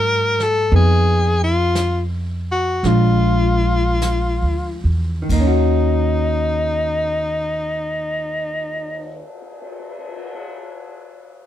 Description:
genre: jazz ballad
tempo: 45-62 BPM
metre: 4/4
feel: swing 68% on 8ths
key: Eb minor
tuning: A4 = 440 Hz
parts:
  - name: breathy tenor saxophone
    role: melody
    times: 0.0-9.2 s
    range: Eb4 to Bb4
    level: -20 LUFS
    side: left 2 dB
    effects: none
  - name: hollow-body jazz guitar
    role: accompaniment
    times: 0.0-9.4 s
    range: Eb3 to Ab4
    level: -23 LUFS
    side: left 2 dB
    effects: none
  - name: upright bass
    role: bass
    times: 0.0-9.2 s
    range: Bb1 to Ab2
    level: -19 LUFS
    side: right 1 dB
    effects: none
  - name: vintage brush drum kit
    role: drums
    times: 0.4-10.4 s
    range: brushed snare drum, crash cymbal, cymbal swell, hi-hat, kick drum, snare drum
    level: -30 LUFS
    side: right 1 dB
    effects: none
room: little or no reverb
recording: close, detailed microphones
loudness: -16 LUFS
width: side -12 dB against mid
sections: 0.0-5.3 A section; 5.3-10.6 B section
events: slowing down 0.0-5.3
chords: 0.0 Abm7; 0.7 Fm7b5; 2.8 Bb7; 5.3 Ebm7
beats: | 0.72 1.75 2.84 4.01 | 5.29 6.63 7.96 9.30

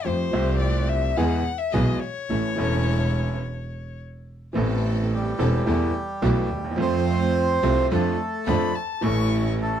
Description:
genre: tango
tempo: 107 BPM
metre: 4/4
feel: rubato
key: A minor from 4.5 s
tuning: A4 = 440 Hz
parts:
  - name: warm violin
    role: second line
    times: 0.0-4.0, 8.5-9.4 s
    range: C5 to C#6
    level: -29 LUFS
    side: left 7 dB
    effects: none
  - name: bright baby grand piano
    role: accompaniment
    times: 0.0-9.8 s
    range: E1 to A4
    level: -26 LUFS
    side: equal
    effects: none
  - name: clear studio string section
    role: stabs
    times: 0.0-9.8 s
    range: A3 to A4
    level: -32 LUFS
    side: right 1 dB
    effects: none
  - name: clear double bass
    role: bass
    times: 0.1-9.8 s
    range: E1 to F2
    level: -24 LUFS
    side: right 1 dB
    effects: none
  - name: bandoneon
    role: melody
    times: 5.1-9.8 s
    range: G3 to C5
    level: -26 LUFS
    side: right 2 dB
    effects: slapback echo, plate reverb
room: light reverb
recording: dark, warm production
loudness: -21 LUFS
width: side -9 dB against mid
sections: 0.0-4.5 A section; 4.5-9.8 B section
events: violin solo 0.0-4.5; stop 3.4-4.5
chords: 0.1 Fadd9; 1.2 E; 2.3 A; 4.5 Amadd9; 5.7 Esus4; 6.8 F; 7.9 Dm/F; 9.0 A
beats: | 0.05 0.61 1.17 1.73 | 2.29 2.85 3.42 3.98 | 4.55 5.11 5.67 6.23 | 6.79 7.35 7.91 8.47 | 9.03 9.59

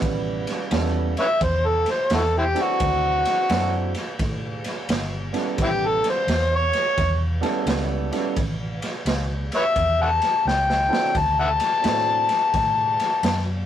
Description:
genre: electric blues shuffle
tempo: 86 BPM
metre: 4/4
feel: swing 65% on 8ths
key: A mixolydian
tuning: A4 = 440 Hz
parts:
  - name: warm upright piano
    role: accompaniment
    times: 0.0-12.2 s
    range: F#3 to B4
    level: -27 LUFS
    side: right 5 dB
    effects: none
  - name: vintage muted fingered electric bass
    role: bass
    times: 0.0-13.7 s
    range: G1 to A2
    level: -26 LUFS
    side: equal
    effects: none
  - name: raw garage drum kit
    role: drums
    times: 0.0-13.4 s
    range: kick drum, ride cymbal, snare drum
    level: -27 LUFS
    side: right 1 dB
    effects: none
  - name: overdriven harmonica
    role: melody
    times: 1.2-13.4 s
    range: C4 to A5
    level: -20 LUFS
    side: left 2 dB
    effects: none
room: light reverb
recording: rough rehearsal-room recording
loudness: -20 LUFS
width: side -10 dB against mid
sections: 0.0-13.7 A section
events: harmonica solo 0.0-13.7; drum fill 10.5-11.1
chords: 0.0 A9; 2.8 D9; 5.6 A9; 11.1 D9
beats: | 0.02 0.71 1.41 2.10 | 2.80 3.50 4.19 4.89 | 5.58 6.28 6.98 7.67 | 8.37 9.06 9.76 10.45 | 11.15 11.84 12.54 13.23

